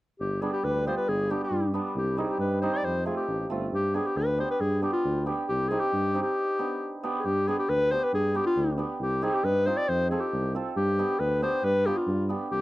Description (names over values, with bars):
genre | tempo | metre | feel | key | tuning
klezmer | 136 BPM | 2/4 | straight | G phrygian dominant | A4 = 440 Hz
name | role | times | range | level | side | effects
mellow clarinet | melody | 0.2-12.6 s | F4 to D5 | -27 LUFS | left 1 dB | none
warm tuba | bass | 0.2-12.6 s | G1 to G2 | -30 LUFS | equal | none
hammered dulcimer | accompaniment | 0.4-12.4 s | G3 to A4 | -31 LUFS | right 2 dB | none
room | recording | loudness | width
little or no reverb | dry, close 1970s-style studio recording | -25 LUFS | side -17 dB against mid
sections
0.2-7.2 A section; 7.2-12.6 A section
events
break 6.4-7.2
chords
0.2 G; 2.0 Cm; 2.8 F; 3.7 G; 5.5 Cm; 6.4 G; 9.0 Cm; 9.9 F; 10.8 G